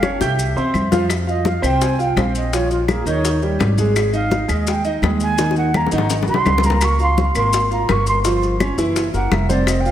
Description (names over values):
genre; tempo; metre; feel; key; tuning
Afro-Cuban jazz; 168 BPM; 4/4; straight; F minor; A4 = 443 Hz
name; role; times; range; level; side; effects
mellow silver concert flute; melody; 0.0-9.9 s; F4 to Db6; -23 LUFS; right 1 dB; diffuse ambient delay
warm concert grand piano; accompaniment; 0.0-9.9 s; Eb3 to G6; -21 LUFS; right 1 dB; lush chorus
upright bass; bass; 0.0-9.9 s; F1 to F2; -20 LUFS; equal; none
bongos; percussion; 0.0-9.9 s; none; -25 LUFS; left 6 dB; none
claves; percussion; 0.0-9.9 s; none; -31 LUFS; left 4 dB; none
congas; percussion; 0.0-9.9 s; none; -25 LUFS; left 1 dB; none
maracas; percussion; 0.0-9.9 s; none; -31 LUFS; left 6 dB; none
room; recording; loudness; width
moderate lush hall reverb, RT60 2.3 s; dreamy mix soaked in reverb; -15 LUFS; side -11 dB against mid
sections
0.0-1.1 A section; 1.1-9.9 B section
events
drum fill 0.2-1.1, 5.4-6.8; flute solo 1.1-9.9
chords
0.4 C; 1.1 F5; 2.5 Bb5; 3.2 Eb7; 4.0 Ab5; 5.4 Eb5; 6.1 Ab9; 6.8 Db6; 8.2 Em69; 9.0 Gb7#11